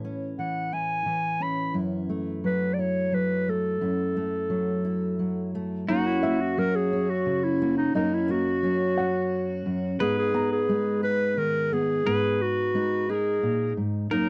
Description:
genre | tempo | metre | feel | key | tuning
acoustic folk-pop ballad | 88 BPM | 3/4 | straight | unclear | A4 = 438 Hz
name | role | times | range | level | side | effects
fingerpicked steel-string acoustic guitar | accompaniment | 0.0-14.3 s | F#2 to A#4 | -30 LUFS | equal | none
mellow clarinet | melody | 0.4-14.3 s | D#4 to B5 | -28 LUFS | equal | none
pedal steel guitar | second line | 5.9-14.3 s | F#4 to B4 | -36 LUFS | equal | none
felt-muted upright piano | arpeggios | 6.2-12.4 s | D#5 to A#5 | -37 LUFS | equal | none
room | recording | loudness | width
light reverb | dry, close 1970s-style studio recording | -26 LUFS | mono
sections
0.0-5.9 A section; 5.9-14.3 B section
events
none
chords
0.0 Amaj7; 1.8 F#m7; 5.9 F#; 10.0 G#m

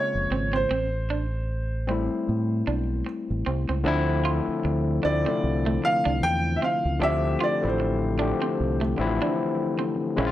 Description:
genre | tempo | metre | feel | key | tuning
R&B | 76 BPM | 4/4 | swing 58% on 16ths | D minor | A4 = 440 Hz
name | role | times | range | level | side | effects
warm grand piano | melody | 0.0-8.8 s | C5 to G5 | -27 LUFS | right 1 dB | none
overdriven tine electric piano | accompaniment | 0.0-10.3 s | C3 to G4 | -26 LUFS | left 3 dB | none
deep dub fingered electric bass | bass | 0.1-10.3 s | F1 to A2 | -27 LUFS | right 1 dB | none
electric guitar at the edge of break-up | second line | 0.3-10.3 s | A3 to F4 | -31 LUFS | right 5 dB | none
room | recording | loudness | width
light reverb, digital ambience | none | -23 LUFS | side -13 dB against mid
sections
0.0-3.9 A section; 3.9-10.3 B section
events
none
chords
0.0 Bbm9; 0.7 Am7; 3.9 Dm9

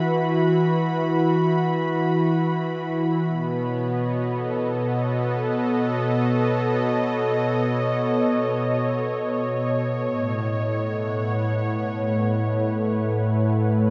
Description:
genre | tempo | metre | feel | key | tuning
ambient | free time | none | none | unclear | A4 = 437 Hz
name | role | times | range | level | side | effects
warm analog pad | solo | 0.0-13.9 s | A2 to B5 | -23 LUFS | equal | chorus, diffuse ambient delay
room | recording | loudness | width
wet cathedral reverb, RT60 4.9 s | in a vast, echoing space, nothing above 8.0 kHz | -23 LUFS | mono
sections
0.0-13.9 A section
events
none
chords
0.0 Esus2; 3.2 B7; 10.1 A6

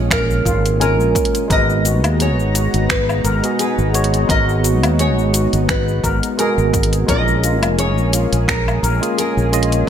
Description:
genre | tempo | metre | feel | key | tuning
sunset chillout | 86 BPM | 4/4 | swing 55% on 16ths | G# dorian | A4 = 440 Hz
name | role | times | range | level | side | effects
tine electric piano | accompaniment | 0.0-9.9 s | G#3 to D#5 | -22 LUFS | equal | medium stereo tremolo, auto-pan, digital delay
lush unison pad | sustained chords | 0.0-9.9 s | A#2 to A#5 | -24 LUFS | equal | chorus
steel pan | arpeggios | 0.0-9.4 s | E#4 to G#5 | -26 LUFS | left 1 dB | digital delay
fretless electric bass | bass | 0.0-9.8 s | E#1 to D#2 | -18 LUFS | equal | none
nylon-string guitar | melody | 0.1-9.9 s | A#4 to D#5 | -22 LUFS | equal | lush chorus, ping-pong delay
deep house drum kit | drums | 0.1-9.8 s | cabasa, finger snaps, hi-hat, woodblock | -22 LUFS | left 1 dB | overdrive
electronic kick drum | drums | 0.1-8.6 s | none | -21 LUFS | equal | overdrive
room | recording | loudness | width
light reverb | bright 1980s-style digital production | -14 LUFS | side -9 dB against mid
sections
0.0-9.9 A section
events
none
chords
0.0 A#m7; 1.5 G#m9; 7.1 A#m7

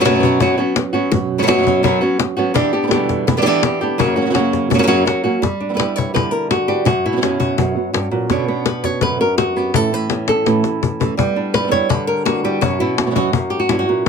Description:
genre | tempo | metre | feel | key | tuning
flamenco | 167 BPM | 4/4 | straight | unclear | A4 = 440 Hz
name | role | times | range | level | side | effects
flamenco guitar | melody | 0.0-14.1 s | F#2 to C#5 | -16 LUFS | equal | none
flamenco guitar | stabs | 0.0-14.1 s | E2 to F#4 | -21 LUFS | right 7 dB | none
cajon | percussion | 0.1-14.1 s | none | -20 LUFS | left 8 dB | none
room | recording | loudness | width
light reverb | close, detailed microphones | -14 LUFS | side -6 dB against mid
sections
0.0-5.4 A section; 5.4-14.1 B section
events
drum fill 10.3-11.2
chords
0.0 F#sus4; 2.6 Em7; 4.0 F#; 5.4 G6; 6.9 F#sus4; 8.3 Bmadd9; 9.7 A; 11.2 G6; 12.6 F#sus4

